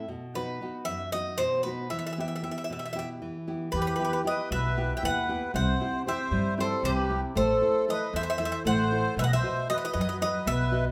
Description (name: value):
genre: greek folk, Greek bouzouki band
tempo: 232 BPM (eighths)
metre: 7/8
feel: straight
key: E harmonic minor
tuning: A4 = 440 Hz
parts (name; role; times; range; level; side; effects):
- Greek bouzouki; melody; 0.0-10.8 s; B4 to G5; -32 LUFS; equal; none
- nylon-string guitar; accompaniment; 0.0-10.9 s; F#2 to D#5; -35 LUFS; equal; none
- accordion; second line; 3.7-10.9 s; G4 to E5; -34 LUFS; equal; light tremolo tuning
- upright bass; bass; 3.7-10.8 s; A1 to G2; -33 LUFS; equal; none
room: moderate large studio reverb, RT60 1.1 s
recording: band playing live in one room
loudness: -28 LUFS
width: mono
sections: 0.0-3.7 A section; 3.7-10.9 B section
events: none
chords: 0.1 B; 1.9 Em; 5.5 C; 7.4 Am; 9.2 B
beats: | 0.10 0.36 0.62 0.88 1.14 1.40 1.65 | 1.91 2.17 2.43 2.69 2.95 3.21 3.47 | 3.73 3.99 4.25 4.51 4.76 5.02 5.28 | 5.54 5.80 6.06 6.32 6.58 6.84 7.10 | 7.36 7.62 7.87 8.13 8.39 8.65 8.91 | 9.17 9.43 9.69 9.95 10.21 10.46 10.72